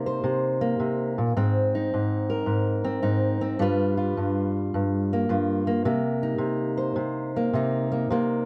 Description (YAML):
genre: blues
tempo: 107 BPM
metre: 4/4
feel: swing 66% on 8ths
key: C minor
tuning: A4 = 441 Hz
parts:
  - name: fingerpicked steel-string acoustic guitar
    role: solo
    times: 0.0-8.5 s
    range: G2 to C5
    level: -25 LUFS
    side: equal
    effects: none
room: light reverb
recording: dark, warm production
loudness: -25 LUFS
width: mono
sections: 0.0-8.5 A section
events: none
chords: 0.0 Cm7; 1.4 Ab; 3.6 G7#9; 5.9 Cm7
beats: 0.24 0.81 | 1.37 1.93 2.50 3.06 | 3.62 4.18 4.74 5.30 | 5.87 6.43 6.99 7.55 | 8.11